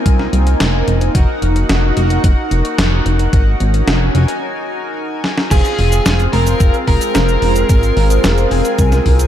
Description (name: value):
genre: synthwave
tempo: 110 BPM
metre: 4/4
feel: straight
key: F phrygian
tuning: A4 = 440 Hz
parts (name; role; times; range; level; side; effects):
- lush unison pad; sustained chords; 0.0-9.3 s; Ab3 to Gb4; -22 LUFS; equal; chorus, phaser, sidechain pumping
- chorused polysynth; stabs; 0.0-9.3 s; C4 to Ab5; -22 LUFS; left 2 dB; ping-pong delay
- chorused synth bass; bass; 0.1-9.3 s; F1 to C2; -14 LUFS; equal; none
- clean 12-bit digital drum machine; drums; 0.1-9.3 s; crash cymbal, hi-hat, shaker, snare drum; -21 LUFS; equal; overdrive
- electronic kick drum; drums; 0.1-9.2 s; none; -13 LUFS; equal; none
- bluesy overdriven lead guitar; melody; 5.5-9.3 s; Ab4 to Bb4; -19 LUFS; equal; distortion, digital delay
- FM electric piano with soft pad layer; second line; 5.5-9.3 s; Ab5 to Bb5; -26 LUFS; right 4 dB; chorus, tremolo
room: light reverb, digital ambience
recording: dark, warm production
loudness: -12 LUFS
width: side -11 dB against mid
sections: 0.0-5.5 A section; 5.5-9.3 B section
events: break 4.4-5.5; drum fill 5.2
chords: 0.0 Bbsus2; 1.1 Ebm/F; 5.5 Fm